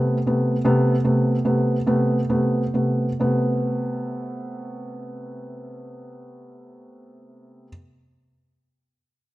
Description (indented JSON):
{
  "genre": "pop",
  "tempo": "42-53 BPM (dotted quarters)",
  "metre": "6/8",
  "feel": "straight",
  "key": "A minor",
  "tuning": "A4 = 441 Hz",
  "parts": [
    { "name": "felt-muted upright piano", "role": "accompaniment", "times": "0.0-7.7 s", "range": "C3 to B3", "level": "-20 LUFS", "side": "equal", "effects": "none" }
  ],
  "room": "light reverb, small room ambience",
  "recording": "none",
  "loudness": "-19 LUFS",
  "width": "side -17 dB against mid",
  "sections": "0.0-3.2 A section; 3.2-8.9 B section",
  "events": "slowing down 0.0-3.2",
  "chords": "0.0 Amadd9"
}